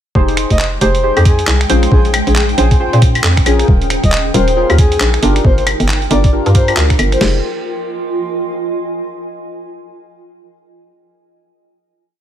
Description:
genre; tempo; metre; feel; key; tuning
UK garage, two-step garage; 136 BPM; 4/4; swing 60% on 16ths; F minor; A4 = 440 Hz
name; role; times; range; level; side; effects
ethereal airy pad; sustained chords; 1.4-7.2 s; G5; -26 LUFS; right 2 dB; ensemble chorus, built-in reverb, phaser, sidechain pumping
deep mellow chord stab; stabs; 0.2-7.4 s; Db4 to C5; -19 LUFS; left 2 dB; chorus
hollow knocking FM bass; bass; 0.2-7.4 s; Eb1 to Bb2; -14 LUFS; equal; none
boom bap sampler-style drum kit; drums; 0.2-7.3 s; crash cymbal, kick drum, snare drum; -12 LUFS; equal; studio reverb
granular cloud pad; texture; 0.8-8.9 s; Ab3 to Ab5; -22 LUFS; right 2 dB; built-in reverb, sidechain pumping
boom bap sampler-style drum kit; drums; 0.3-7.2 s; claves, finger snaps, handclaps, hi-hat; -18 LUFS; equal; studio reverb
breathy flute-like synth lead; melody; 0.5-7.2 s; Ab4 to Eb5; -20 LUFS; left 1 dB; chorus, ping-pong delay
room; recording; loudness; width
little or no reverb; none; -10 LUFS; side -10 dB against mid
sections
0.2-7.2 drop; 7.2-9.0 final chord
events
drop 0.2-7.2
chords
0.2 Fm7; 1.7 Bbm9; 3.7 Eb7sus4; 5.2 Gm7; 7.2 Fm7

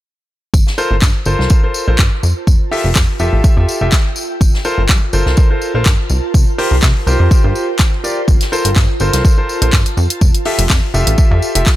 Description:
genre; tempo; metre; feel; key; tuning
piano house; 124 BPM; 4/4; swing 54% on 16ths; G dorian; A4 = 440 Hz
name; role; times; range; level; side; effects
plucky analog bass; bass; 0.5-11.6 s; F1 to C3; -15 LUFS; equal; sidechain pumping
electronic kick drum; drums; 0.5-11.8 s; none; -12 LUFS; equal; none
vintage drum kit; drums; 0.5-11.8 s; hi-hat, snare drum, tambourine; -25 LUFS; left 2 dB; high-pass filter on hats, high-pass filter on snare, high-pass filter on perc, high-pass filter on room
ethereal airy pad; texture; 1.8-11.8 s; F4 to A5; -24 LUFS; right 3 dB; ensemble chorus, built-in reverb, sidechain pumping
clear concert grand piano; riff; 0.8-11.7 s; F4 to E5; -19 LUFS; left 1 dB; sidechain pumping
house drum kit; drums; 1.0-11.8 s; handclaps, hi-hat; -19 LUFS; equal; none
room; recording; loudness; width
small room ambience; none; -11 LUFS; side -15 dB against mid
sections
0.5-11.8 A section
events
none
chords
0.5 Gm11; 2.5 Fmaj9; 4.2 Gm11; 6.1 C7sus4; 8.3 Gm11; 10.2 Fmaj9

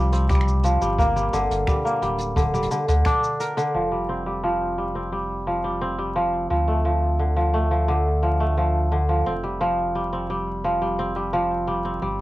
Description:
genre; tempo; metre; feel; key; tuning
folktronica; 87 BPM; 4/4; straight; F major; A4 = 440 Hz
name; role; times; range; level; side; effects
kora; arpeggios; 0.0-12.2 s; D3 to Bb4; -22 LUFS; equal; low-pass filter, cassette tape, analog delay
warm sub bass; bass; 0.0-12.2 s; D1 to D2; -25 LUFS; equal; none
jazz brush drum kit; drums; 0.1-3.7 s; cabasa, finger snaps, hi-hat; -36 LUFS; right 1 dB; cassette tape
kick drum; drums; 0.3-3.2 s; none; -24 LUFS; equal; cassette tape
room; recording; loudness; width
light reverb; home recording on cassette, vinyl crackle; -20 LUFS; side -17 dB against mid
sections
0.0-3.7 A section; 3.7-12.2 B section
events
none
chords
0.0 Fsus2; 1.0 Gm; 3.7 Fsus2; 6.5 Dm; 9.3 Fsus2

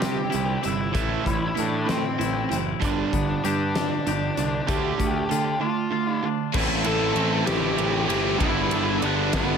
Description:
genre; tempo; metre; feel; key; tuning
quiet-loud alternative rock; 64 BPM (dotted quarters); 6/8; straight; A minor; A4 = 440 Hz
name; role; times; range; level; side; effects
octave-fuzz lead guitar; melody; 0.0-9.6 s; B3 to A5; -28 LUFS; left 1 dB; distortion
twangy electric guitar; arpeggios; 0.0-6.6 s; G2 to G4; -31 LUFS; left 10 dB; none
cranked stack guitar; riff; 0.0-9.6 s; G2 to E4; -27 LUFS; right 12 dB; overdrive
fuzz picked electric bass; bass; 0.0-9.6 s; F#1 to D3; -28 LUFS; left 1 dB; overdrive
big rock drum kit; drums; 0.0-9.5 s; crash cymbal, hi-hat, kick drum, ride cymbal, snare drum; -29 LUFS; left 1 dB; none
heavy high-gain guitar; riff; 6.5-9.6 s; G2 to A3; -29 LUFS; left 2 dB; distortion
overdriven semi-hollow guitar; riff; 6.5-9.6 s; G2 to E4; -29 LUFS; left 15 dB; spring reverb
room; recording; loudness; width
light reverb; none; -21 LUFS; side -7 dB against mid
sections
0.0-6.5 A section; 6.5-9.6 B section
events
none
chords
0.0 C; 0.9 Am7; 2.8 G; 4.7 Dm; 6.5 Am7; 8.4 G6

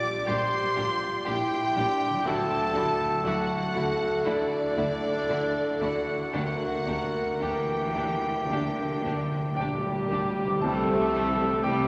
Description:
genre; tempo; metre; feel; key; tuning
cinematic, emotional film score for orchestra; 54-61 BPM; 4/4; rubato; G dorian; A4 = 439 Hz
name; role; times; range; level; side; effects
rich symphonic violin section; melody; 0.0-11.9 s; C4 to D6; -38 LUFS; equal; none
bright clarinet; second line; 0.0-11.9 s; D4 to D5; -35 LUFS; equal; none
silver concert flute; second line; 0.0-10.1 s; D5 to D6; -35 LUFS; equal; none
dark baby grand piano; accompaniment; 0.0-11.9 s; Bb1 to A5; -37 LUFS; equal; none
warm French horn section; sustained chords; 0.0-11.9 s; G3 to Bb4; -34 LUFS; equal; none
concert harp; arpeggios; 0.0-11.9 s; Bb2 to D5; -45 LUFS; equal; none
rich symphonic violin section; second line; 0.3-11.9 s; G3 to G4; -40 LUFS; equal; none
warm symphonic viola section; accompaniment; 0.3-11.8 s; E3 to D4; -40 LUFS; equal; none
rich symphonic cello section; bass; 0.3-11.9 s; Bb2 to E3; -38 LUFS; equal; none
rich symphonic double bass section; bass; 0.3-11.9 s; Bb1 to D2; -43 LUFS; equal; none
timpani; percussion; 6.3-10.6 s; D3; -40 LUFS; equal; none
mellow cor anglais; second line; 9.6-11.9 s; G4 to A4; -40 LUFS; equal; none
room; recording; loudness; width
wet cathedral reverb, RT60 5.3 s; none; -27 LUFS; mono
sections
0.0-10.6 A section; 10.6-11.9 B section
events
timpani fill 6.3-10.6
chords
0.0 Gm/Bb; 2.3 Dadd9; 6.3 Gm/D; 10.6 C

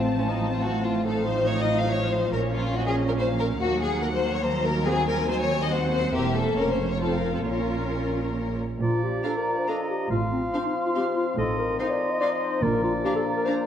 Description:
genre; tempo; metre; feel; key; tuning
quick classical-period movement for symphony orchestra; 141 BPM; 3/4; rubato; Bb minor, Bb major from 8.8 s; A4 = 436 Hz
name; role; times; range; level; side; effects
rich chamber violin section; melody; 0.0-13.6 s; Db5 to C6; -36 LUFS; left 3 dB; none
rich chamber violin section; second line; 0.0-13.5 s; C4 to F5; -28 LUFS; left 3 dB; none
rich chamber viola section; accompaniment; 0.0-13.5 s; F3 to F4; -31 LUFS; right 2 dB; none
clear French horn section; sustained chords; 0.0-13.7 s; Bb3 to Bb4; -32 LUFS; left 4 dB; none
clear chamber double bass section; bass; 0.0-13.0 s; E1 to Eb2; -30 LUFS; right 3 dB; none
rich chamber cello section; bass; 0.0-13.0 s; Eb2 to Bb2; -31 LUFS; right 2 dB; none
bright oboe; second line; 8.8-13.7 s; D5 to F5; -33 LUFS; right 1 dB; none
dark clarinet; second line; 8.8-13.7 s; C4 to Eb5; -27 LUFS; left 2 dB; none
mellow hollow flute section; second line; 8.8-13.6 s; Bb5 to C6; -32 LUFS; equal; none
warm bassoon; accompaniment; 8.8-13.7 s; F3; -33 LUFS; left 1 dB; none
timpani; percussion; 12.6-13.2 s; Bb2; -34 LUFS; equal; none
room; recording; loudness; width
moderate scoring stage reverb, RT60 1.8 s; none; -23 LUFS; side -9 dB against mid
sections
0.0-8.8 A section; 8.8-13.7 A section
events
none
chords
0.0 F/A; 1.1 F7/A; 2.3 Bbm; 3.6 Ebm; 4.9 Cdim/Eb; 6.1 C7/E; 6.6 Bbm/F; 7.0 F5; 7.4 Bbm; 8.8 Bb; 10.1 F/A; 11.4 F7/A; 12.6 Bb

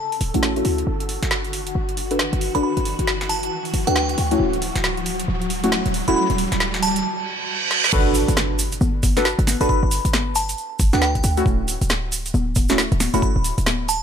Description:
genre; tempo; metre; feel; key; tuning
UK garage, two-step garage; 136 BPM; 4/4; swing 62% on 16ths; G lydian; A4 = 440 Hz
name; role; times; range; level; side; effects
soft string machine; sustained chords; 0.0-7.9 s; F#4 to A4; -31 LUFS; left 1 dB; phaser, ensemble chorus, sidechain pumping
riser, reverse cymbal and impact; sound effects; 0.0-9.7 s; none; -26 LUFS; right 2 dB; none
garage drum kit; drums; 0.1-14.0 s; congas, crash cymbal, hi-hat, snare drum; -24 LUFS; equal; overdrive, high-pass filter on hats, high-pass filter on snare, high-pass filter on cymbals, high-pass filter on perc
short 808-style bass; bass; 0.2-14.0 s; D1 to D2; -23 LUFS; equal; tube saturation
deep mellow chord stab; stabs; 0.3-13.3 s; A3 to B4; -23 LUFS; left 1 dB; chorus, dub echo
glassy synth bell; melody; 2.5-14.0 s; G5 to B5; -26 LUFS; right 1 dB; chorus, phaser, dub echo
electronic kick drum; drums; 7.9-13.3 s; none; -20 LUFS; equal; overdrive
cabasa; percussion; 7.9-14.0 s; none; -28 LUFS; right 4 dB; none
room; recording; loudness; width
light reverb; none; -18 LUFS; side -8 dB against mid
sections
0.0-7.9 A section; 7.9-14.0 B section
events
build-up 0.0-7.9; riser 0.0-7.0; filter sweep on synth stab 0.0-7.9; reverse cymbal 7.0-7.9; drum fill 7.7; drop 7.9-14.0; impact 7.9-9.7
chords
0.0 Dmaj9; 0.9 Gmaj9; 4.2 Dmaj9; 7.9 Gmaj9; 11.2 Dmaj9

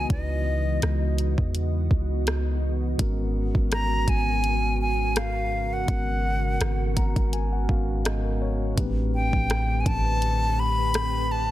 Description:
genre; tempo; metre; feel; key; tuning
contemporary R&B; 83 BPM; 4/4; swing 54% on 16ths; unclear; A4 = 440 Hz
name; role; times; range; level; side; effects
breathy bright concert flute; melody; 0.0-11.5 s; D#5 to B5; -28 LUFS; left 1 dB; digital delay
mellow tine electric piano; accompaniment; 0.0-11.5 s; G#2 to A#5; -31 LUFS; left 2 dB; medium stereo tremolo
glassy FM pad; sustained chords; 0.0-11.5 s; C#3 to D#5; -33 LUFS; equal; ensemble chorus, built-in reverb
warm 808-style bass; bass; 0.0-11.5 s; G#1 to E2; -26 LUFS; equal; none
smooth R&B drum kit; drums; 0.1-11.1 s; hi-hat, kick drum, rim click; -26 LUFS; equal; none
room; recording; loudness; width
little or no reverb; dense, heavily limited modern master; -22 LUFS; side -14 dB against mid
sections
0.0-11.5 A section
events
tine electric piano fill 6.6-8.8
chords
0.0 C#m11; 3.0 G#m11; 8.8 Am11

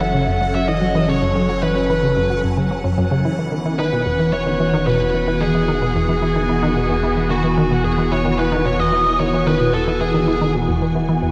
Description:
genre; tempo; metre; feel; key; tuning
ambient, sequencer-driven space music; 111 BPM; 4/4; straight; unclear; A4 = 435 Hz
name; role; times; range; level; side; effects
high-gain lead guitar; melody; 0.0-10.5 s; F#4 to F#5; -23 LUFS; equal; distortion, tape echo
phased string machine; sustained chords; 0.0-11.3 s; E3 to G#5; -24 LUFS; equal; ensemble chorus, phaser
resonant blip pluck; riff; 0.0-11.3 s; E2 to F#3; -23 LUFS; equal; chorus, tape echo
warm sub bass; bass; 0.0-11.3 s; E1 to F#1; -28 LUFS; equal; none
bubbling stepped-filter texture; texture; 0.0-11.3 s; F#5; -36 LUFS; equal; chorus, built-in reverb
room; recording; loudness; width
wet lush hall reverb, RT60 2.8 s; dark, warm production; -18 LUFS; mono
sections
0.0-11.3 A section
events
none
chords
0.0 F#m; 3.2 E

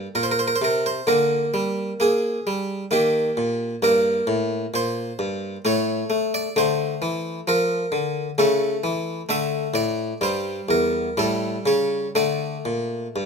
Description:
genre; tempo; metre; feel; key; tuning
classical, baroque-style suite movement for harpsichord; 65 BPM; 3/4; rubato; unclear; A4 = 440 Hz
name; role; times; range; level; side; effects
harpsichord; solo; 0.0-13.3 s; E2 to E5; -20 LUFS; equal; none
room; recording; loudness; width
light reverb; close, detailed microphones; -20 LUFS; side -5 dB against mid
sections
0.0-13.3 A section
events
none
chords
0.0 N.C.; 1.1 Bb7/D; 2.9 Eb; 3.8 Gmadd11; 5.7 N.C.; 6.6 Dm; 8.4 A/C#; 9.3 D5; 10.2 Edim/G; 11.2 A7; 12.2 D5

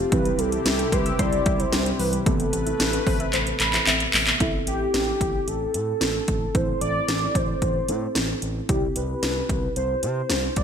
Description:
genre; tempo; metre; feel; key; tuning
synth-pop; 112 BPM; 4/4; straight; A minor; A4 = 439 Hz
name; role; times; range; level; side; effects
warm velvety synth lead; melody; 0.0-10.6 s; E4 to D5; -27 LUFS; equal; chorus, ping-pong delay
muted felt-like synth keys; accompaniment; 0.0-10.6 s; B3 to B5; -31 LUFS; right 5 dB; chorus
warm analog pad; sustained chords; 0.0-4.4 s; C3 to B4; -31 LUFS; left 3 dB; chorus
warbly dusty pluck; arpeggios; 0.0-4.4 s; E3 to E6; -32 LUFS; left 4 dB; chorus, ping-pong delay
smooth gliding synth bass; bass; 0.0-10.6 s; A1 to C3; -29 LUFS; equal; none
house drum kit; drums; 0.1-10.6 s; handclaps, hi-hat, kick drum, snare drum; -24 LUFS; equal; overdrive, gated reverb
room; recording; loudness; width
moderate lush hall reverb, RT60 1.7 s; bright 1980s-style digital production; -21 LUFS; side -7 dB against mid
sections
0.0-4.4 A section; 4.4-10.6 B section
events
drum fill 3.3-4.4; synth keys fill 3.3-4.4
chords
0.1 C; 2.3 Amadd9; 4.4 Am; 8.7 C

